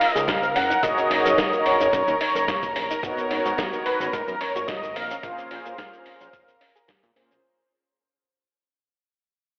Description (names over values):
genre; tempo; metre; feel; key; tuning
nu-disco, nu disco; 109 BPM; 4/4; swing 54% on 16ths; unclear; A4 = 443 Hz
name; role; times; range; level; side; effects
unison lead; melody; 0.0-7.1 s; Bb4 to Gb5; -27 LUFS; equal; subtle chorus, analog delay
dark chamber string section; sustained chords; 0.0-7.5 s; Bb4 to Bb5; -31 LUFS; equal; sidechain pumping
soft round pluck; arpeggios; 0.0-7.4 s; Bb3 to Bb4; -36 LUFS; equal; chorus, vintage 12-bit sampler grit, sidechain pumping, analog delay
dusty soul sampler-style drum kit; drums; 0.0-7.4 s; cabasa, hi-hat, snare drum; -31 LUFS; equal; overdrive
fat analog bass; bass; 0.2-7.4 s; Gb1 to Bb2; -35 LUFS; equal; none
electronic kick drum; drums; 0.3-7.1 s; none; -39 LUFS; equal; none
mellow synth brass; accompaniment; 0.8-7.4 s; Bb3 to Db5; -29 LUFS; equal; chorus, phaser, sidechain pumping
room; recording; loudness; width
moderate lush hall reverb, RT60 2.6 s; played on a big sound system in a bare room, stone room reverb, telephone sound; -23 LUFS; mono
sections
0.0-7.4 A section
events
drop 0.0-7.4; fade-out 1.6-7.4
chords
0.0 Dbmaj7; 0.6 Gb6; 3.0 Abm11; 5.0 Bbm9